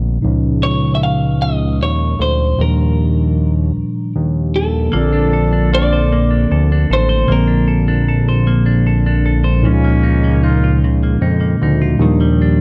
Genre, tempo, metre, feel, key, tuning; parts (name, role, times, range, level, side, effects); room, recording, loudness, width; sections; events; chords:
slow six-eight R&B; 51 BPM (dotted quarters); 6/8; straight; Bb major; A4 = 440 Hz
mellow tine electric piano; accompaniment; 0.0-12.6 s; Bb2 to A4; -19 LUFS; equal
fat analog bass; bass; 0.0-12.6 s; A1 to F2; -18 LUFS; equal
semi-hollow electric guitar; melody; 0.6-9.2 s; A4 to F5; -23 LUFS; equal; slapback echo
clean electric guitar; second line; 4.9-12.6 s; Db3 to C5; -24 LUFS; equal
warm horn section; stabs; 4.9-6.0, 9.6-10.7 s; F3 to A4; -27 LUFS; equal
light reverb; dark, warm production; -15 LUFS; mono
0.0-4.9 A section; 4.9-12.6 B section
0.2 Db69; 2.6 Ebmaj9; 4.9 Bbmaj9; 9.6 Db69; 12.0 Ebmaj9